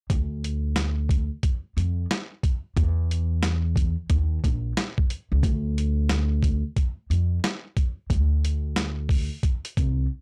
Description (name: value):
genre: hip hop, jazz-hop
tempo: 90 BPM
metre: 4/4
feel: swing 64% on 16ths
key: unclear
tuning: A4 = 440 Hz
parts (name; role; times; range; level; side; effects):
- upright bass; bass; 0.1-10.0 s; Bb1 to F2; -26 LUFS; equal; tube saturation
- boom bap sampler-style drum kit; drums; 0.1-10.0 s; hi-hat, kick drum, snare drum; -27 LUFS; equal; none
room: little or no reverb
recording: blown-out, overdriven recording, overdrive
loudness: -25 LUFS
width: mono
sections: 0.1-10.2 A section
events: none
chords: none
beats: | 0.10 0.77 1.43 2.10 | 2.77 3.43 4.10 4.77 | 5.43 6.10 6.77 7.43 | 8.10 8.77 9.43